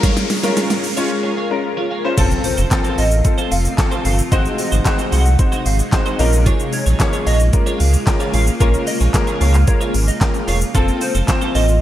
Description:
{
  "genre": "dance-pop",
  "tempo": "112 BPM",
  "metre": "4/4",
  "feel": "straight",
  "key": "Bb minor",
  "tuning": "A4 = 439 Hz",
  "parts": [
    { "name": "warm baby grand piano", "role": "accompaniment", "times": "0.0-11.7 s", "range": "Ab3 to Db5", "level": "-22 LUFS", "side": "left 3 dB", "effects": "analog chorus, sidechain pumping, low-pass filter" },
    { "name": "granular cloud pad", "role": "sustained chords", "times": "0.0-11.8 s", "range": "C3 to Bb4", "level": "-25 LUFS", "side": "equal", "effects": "built-in reverb, analog chorus, sidechain pumping, low-pass filter" },
    { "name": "twelve-string electric guitar", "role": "riff", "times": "0.0-11.8 s", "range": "Eb4 to Db5", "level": "-27 LUFS", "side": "right 4 dB", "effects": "analog chorus, low-pass filter" },
    { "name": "pop drum kit", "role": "drums", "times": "0.0-11.8 s", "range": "crash cymbal, handclaps, hi-hat, kick drum, shaker, snare drum", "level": "-18 LUFS", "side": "equal", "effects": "gated reverb" },
    { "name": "riser and impact", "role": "sound effects", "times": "0.0-4.3 s", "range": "none", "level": "-27 LUFS", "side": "equal", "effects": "none" },
    { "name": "sub bass with octave", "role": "bass", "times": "2.2-11.8 s", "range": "E1 to Db2", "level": "-15 LUFS", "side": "equal", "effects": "sidechain pumping" },
    { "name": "plucky unison lead", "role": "melody", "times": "2.4-11.8 s", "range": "C5 to Gb5", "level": "-25 LUFS", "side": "right 1 dB", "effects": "lush chorus, sidechain pumping, digital delay" }
  ],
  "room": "light reverb",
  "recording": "bright 1980s-style digital production",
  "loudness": "-14 LUFS",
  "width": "side -13 dB against mid",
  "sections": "0.0-2.2 A section; 2.2-11.8 B section",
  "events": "build-up 0.0-2.2; drum fill 0.0-1.1; riser 0.0-2.2; break 1.1-2.2; drop 2.2-11.8; impact 2.2-4.3",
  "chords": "0.0 Bbm7; 2.2 F; 4.3 Ab7; 6.2 Bbm7; 10.7 F",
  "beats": "| 0.03 0.57 1.10 1.64 | 2.18 2.71 3.25 3.78 | 4.32 4.86 5.39 5.93 | 6.46 7.00 7.53 8.07 | 8.61 9.14 9.68 10.21 | 10.75 11.28"
}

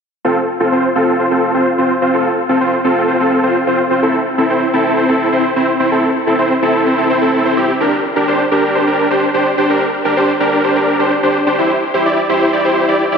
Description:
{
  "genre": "EDM",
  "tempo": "127 BPM",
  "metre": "4/4",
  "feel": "straight",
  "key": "F major",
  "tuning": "A4 = 440 Hz",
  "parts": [
    { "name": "supersaw chords", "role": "riff", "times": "0.2-13.2 s", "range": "C4 to D5", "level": "-12 LUFS", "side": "equal", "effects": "low-pass filter, ping-pong delay" }
  ],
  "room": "wet lush hall reverb, RT60 2.8 s",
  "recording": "dense, heavily limited modern master",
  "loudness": "-12 LUFS",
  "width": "side -6 dB against mid",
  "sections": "0.2-13.2 A section",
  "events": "none",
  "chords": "0.2 F; 4.0 Am; 7.8 Gm; 11.6 C",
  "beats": "| 0.25 0.72 1.19 1.66 | 2.14 2.61 3.08 3.55 | 4.03 4.50 4.97 5.44 | 5.92 6.39 6.86 7.33 | 7.80 8.28 8.75 9.22 | 9.70 10.17 10.64 11.11 | 11.59 12.06 12.53 13.00"
}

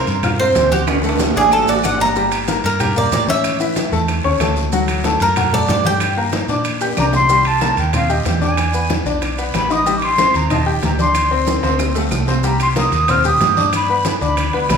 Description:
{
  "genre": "latin, salsa",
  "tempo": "187 BPM",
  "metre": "4/4",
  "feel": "straight",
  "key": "G harmonic minor",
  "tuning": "A4 = 439 Hz",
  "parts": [
    { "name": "Cuban tres", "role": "melody", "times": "0.0-6.2 s", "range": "G4 to Bb5", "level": "-17 LUFS", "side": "right 2 dB", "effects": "none" },
    { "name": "bright upright piano", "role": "accompaniment", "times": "0.0-14.8 s", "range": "E3 to G6", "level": "-20 LUFS", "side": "left 3 dB", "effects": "none" },
    { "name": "hollow-body short-scale fingered electric bass", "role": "bass", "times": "0.1-14.8 s", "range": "G1 to Bb2", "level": "-21 LUFS", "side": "equal", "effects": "none" },
    { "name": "bongos", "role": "percussion", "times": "0.1-14.8 s", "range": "none", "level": "-28 LUFS", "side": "left 2 dB", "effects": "none" },
    { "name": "congas", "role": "percussion", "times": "0.1-14.8 s", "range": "none", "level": "-25 LUFS", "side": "equal", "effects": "none" },
    { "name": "guiro", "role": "percussion", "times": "0.1-14.8 s", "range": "none", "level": "-32 LUFS", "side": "left 4 dB", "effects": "none" },
    { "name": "maracas", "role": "percussion", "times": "0.1-14.8 s", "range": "none", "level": "-33 LUFS", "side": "right 6 dB", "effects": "none" },
    { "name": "timbales", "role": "percussion", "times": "0.1-14.8 s", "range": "none", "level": "-25 LUFS", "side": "right 4 dB", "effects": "none" },
    { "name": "claves", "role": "percussion", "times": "0.2-14.8 s", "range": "none", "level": "-32 LUFS", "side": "right 3 dB", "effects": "none" },
    { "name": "silver concert flute", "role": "melody", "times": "7.0-14.8 s", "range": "Eb5 to F6", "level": "-17 LUFS", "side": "equal", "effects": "none" }
  ],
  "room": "wet large studio reverb, RT60 1.2 s",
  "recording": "band playing live in one room",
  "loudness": "-14 LUFS",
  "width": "side -6 dB against mid",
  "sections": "0.0-7.3 A section; 7.3-14.8 B section",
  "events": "Cuban tres solo 0.0-7.3; drum fill 0.9-2.2, 6.3-7.3, 11.5-12.4",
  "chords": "0.0 Csus4; 0.9 D; 2.2 Gmadd9; 3.4 A; 4.7 D; 6.0 Gm; 7.3 Cm7; 8.6 E7; 9.9 Am7b5; 11.2 Csus2/D; 11.8 D5; 12.4 Cm7; 13.7 G",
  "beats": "0.23 0.55 | 0.88 1.20 1.52 1.84 | 2.16 2.48 2.80 3.12 | 3.44 3.76 4.08 4.41 | 4.73 5.05 5.37 5.69 | 6.01 6.33 6.65 6.97 | 7.29 7.61 7.94 8.26 | 8.58 8.90 9.22 9.54 | 9.86 10.19 10.51 10.83 | 11.15 11.47 11.80 12.12 | 12.44 12.76 13.09 13.41 | 13.73 14.05 14.37 14.70"
}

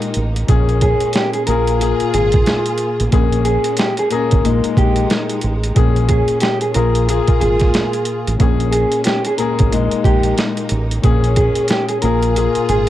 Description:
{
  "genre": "hip hop, boom-bap hip-hop",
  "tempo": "91 BPM",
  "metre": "4/4",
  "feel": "swing 61% on 16ths",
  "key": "Bb dorian",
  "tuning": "A4 = 440 Hz",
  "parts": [
    { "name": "dark grand piano", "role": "accompaniment", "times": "0.0-12.9 s", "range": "Bb2 to Ab4", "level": "-20 LUFS", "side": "left 7 dB", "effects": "cassette tape" },
    { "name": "warm studio string section", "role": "sustained chords", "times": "0.0-12.9 s", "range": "Ab3 to Ab4", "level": "-26 LUFS", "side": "equal", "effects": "cassette tape" },
    { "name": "boom bap sampler-style drum kit", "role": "drums", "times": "0.0-12.9 s", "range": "hi-hat, kick drum, snare drum", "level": "-17 LUFS", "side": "right 1 dB", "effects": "none" },
    { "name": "deep dub fingered electric bass", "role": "bass", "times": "0.2-12.9 s", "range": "Ab1 to Bb1", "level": "-18 LUFS", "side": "right 1 dB", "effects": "none" },
    { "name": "mellow electric guitar", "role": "melody", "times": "0.8-12.9 s", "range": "G4 to Bb4", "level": "-20 LUFS", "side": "right 1 dB", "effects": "cassette tape, analog delay" }
  ],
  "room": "little or no reverb",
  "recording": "home recording on cassette",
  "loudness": "-13 LUFS",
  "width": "side -13 dB against mid",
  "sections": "0.0-12.9 A section",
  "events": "none",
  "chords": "0.5 Bbm7; 1.5 Fm; 3.1 Bbm7; 4.4 Ebsus4/Bb; 5.8 Bbm7; 6.8 Fm; 8.4 Bbm7; 9.7 Ebsus4/Bb; 11.0 Bbm7; 12.0 Fm",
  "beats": "| 0.49 1.15 1.81 2.46 | 3.12 3.78 4.44 5.10 | 5.76 6.42 7.08 7.74 | 8.40 9.06 9.72 10.38 | 11.04 11.70 12.36"
}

